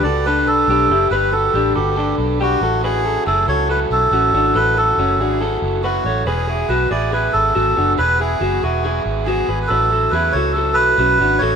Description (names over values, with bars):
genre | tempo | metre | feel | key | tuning
indie pop | 140 BPM | 4/4 | straight | A major | A4 = 441 Hz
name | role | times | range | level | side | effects
melodica | melody | 0.0-11.6 s | F#4 to D5 | -17 LUFS | right 1 dB | ping-pong delay
overdriven electric guitar | accompaniment | 0.0-11.6 s | A2 to B4 | -28 LUFS | right 12 dB | none
electric guitar through a small old amp | arpeggios | 0.0-11.6 s | B3 to C#5 | -20 LUFS | left 2 dB | none
vintage muted fingered electric bass | bass | 0.0-11.6 s | E1 to E2 | -22 LUFS | equal | none
room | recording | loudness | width
moderate plate reverb, RT60 2.5 s | rough home demo mix | -14 LUFS | side -7 dB against mid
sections
0.0-11.6 A section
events
none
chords
0.0 Gadd9; 2.6 A6; 6.3 Eadd9; 9.7 A6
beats
0.26 0.69 | 1.12 1.55 1.98 2.41 | 2.84 3.27 3.70 4.13 | 4.56 4.99 5.41 5.84 | 6.27 6.70 7.13 7.55 | 7.98 8.41 8.84 9.27 | 9.70 10.12 10.55 10.98 | 11.41